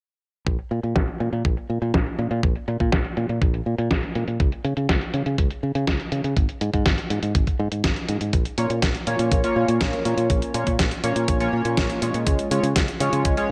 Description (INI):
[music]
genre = italo disco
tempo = 122 BPM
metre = 4/4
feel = straight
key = Bb minor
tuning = A4 = 438 Hz
[part]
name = fingered electric bass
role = bass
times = 0.5-13.3 s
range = Ab1 to Db3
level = -27 LUFS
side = equal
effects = tube saturation, digital delay
[part]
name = clean 12-bit digital drum machine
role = drums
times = 0.5-13.5 s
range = hi-hat, snare drum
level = -29 LUFS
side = equal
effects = low-pass filter on hats, low-pass filter on snare, low-pass filter on room, gated reverb
[part]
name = electronic kick drum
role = drums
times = 0.5-13.3 s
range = none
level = -25 LUFS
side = equal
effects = none
[part]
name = chorused polysynth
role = stabs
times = 8.6-13.5 s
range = Ab3 to Db5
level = -26 LUFS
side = equal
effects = digital delay
[sound]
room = light reverb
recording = none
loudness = -23 LUFS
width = mono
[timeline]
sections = 0.5-13.5 A section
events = filter sweep on drum 0.5-13.5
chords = 0.5 N.C.; 8.3 Bbm; 12.3 Db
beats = | 0.46 0.96 1.45 1.94 | 2.43 2.92 3.42 3.91 | 4.40 4.89 5.38 5.87 | 6.37 6.86 7.35 7.84 | 8.33 8.82 9.32 9.81 | 10.30 10.79 11.28 11.78 | 12.27 12.76 13.25